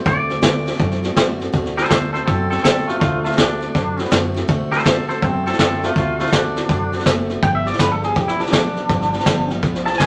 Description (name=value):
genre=rockabilly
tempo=163 BPM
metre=4/4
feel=swing 65% on 8ths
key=D mixolydian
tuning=A4 = 442 Hz
part: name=twangy electric guitar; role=melody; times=0.0-10.1 s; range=A3 to A5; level=-24 LUFS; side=equal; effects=none
part: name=picked steel-string acoustic guitar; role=accompaniment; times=0.0-10.1 s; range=G2 to G4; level=-28 LUFS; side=equal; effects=none
part: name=upright bass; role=bass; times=0.1-10.1 s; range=F#1 to F#2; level=-28 LUFS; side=equal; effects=none
part: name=vintage brush drum kit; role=drums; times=0.1-10.1 s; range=hi-hat, kick drum, snare drum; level=-21 LUFS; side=equal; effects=none
room=moderate studio reverb, RT60 0.8 s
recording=none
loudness=-18 LUFS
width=mono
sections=0.0-1.5 A section; 1.5-10.1 B section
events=clean electric guitar solo 1.5-10.1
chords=0.0 D7; 7.4 G7